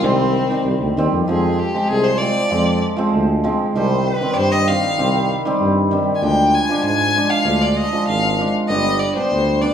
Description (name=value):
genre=klezmer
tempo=97 BPM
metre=2/4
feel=straight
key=C harmonic minor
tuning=A4 = 440 Hz
part: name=rich violin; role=melody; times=0.0-9.7 s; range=C4 to Ab5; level=-19 LUFS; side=left 2 dB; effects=none
part: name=hammered dulcimer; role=accompaniment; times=0.0-9.7 s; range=Eb3 to D4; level=-19 LUFS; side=right 1 dB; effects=none
part: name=warm tuba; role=bass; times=0.0-9.7 s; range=G1 to Ab2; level=-21 LUFS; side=equal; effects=none
room=wet large studio reverb, RT60 1.2 s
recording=band playing live in one room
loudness=-15 LUFS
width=side -8 dB against mid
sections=0.0-1.3 A section; 1.3-9.7 B section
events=none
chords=0.0 Cm; 1.3 Fm; 3.7 Cm; 6.2 Ddim; 8.7 G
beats=| 0.03 0.65 | 1.27 1.89 | 2.51 3.13 | 3.75 4.37 | 4.99 5.60 | 6.22 6.84 | 7.46 8.08 | 8.69 9.31